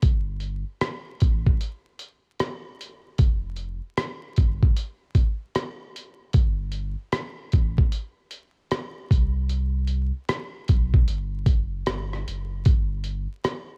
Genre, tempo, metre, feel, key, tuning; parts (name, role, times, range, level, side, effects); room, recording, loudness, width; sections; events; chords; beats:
lo-fi hip hop; 76 BPM; 4/4; swing 64% on 16ths; G major; A4 = 440 Hz
saturated sub bass; bass; 0.0-13.3 s; F1 to C2; -31 LUFS; equal
dusty soul sampler-style drum kit; drums; 0.0-13.7 s; hi-hat, kick drum, rim click; -23 LUFS; equal; cassette tape
little or no reverb; home recording on cassette, vinyl crackle; -25 LUFS; mono
0.0-12.7 A section; 12.7-13.8 A section
| 0.03 0.82 1.61 2.40 | 3.19 3.98 4.77 5.56 | 6.34 7.13 7.92 8.71 | 9.50 10.29 11.08 11.87 | 12.66 13.45